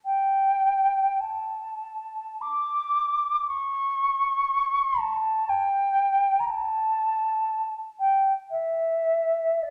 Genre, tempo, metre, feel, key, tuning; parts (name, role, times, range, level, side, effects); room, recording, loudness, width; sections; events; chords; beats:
classical, free, expressive piece for unaccompanied flute; 46-62 BPM; 3/4; rubato; A4 = 440 Hz
mellow hollow silver concert flute; solo; 0.1-9.7 s; D5 to D6; -25 LUFS; equal
wet recital hall reverb, RT60 1.4 s; -25 LUFS; mono
0.0-9.7 A section
| 0.06 1.18 2.42 | 3.48 4.50 5.50 | 6.47 7.49 8.52 | 9.63